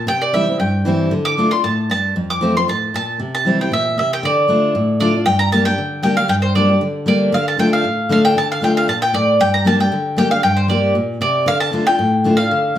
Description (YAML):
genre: bluegrass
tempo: 232 BPM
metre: 4/4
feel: straight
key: D minor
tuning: A4 = 438 Hz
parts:
  - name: mandolin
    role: melody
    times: 0.0-12.8 s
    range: C5 to D6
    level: -17 LUFS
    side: equal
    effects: plate reverb
  - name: picked steel-string acoustic guitar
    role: accompaniment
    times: 0.0-12.8 s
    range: F2 to G4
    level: -17 LUFS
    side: left 1 dB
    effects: none
room: wet studio reverb, RT60 0.7 s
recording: heard from further back in the room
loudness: -14 LUFS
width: side -11 dB against mid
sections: 0.0-5.3 A section; 5.3-12.8 B section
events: none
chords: 0.1 C; 1.1 Dm; 2.2 F; 3.2 C; 4.2 Dm; 5.3 Gm; 7.3 Dm; 9.4 Gm; 11.5 Dm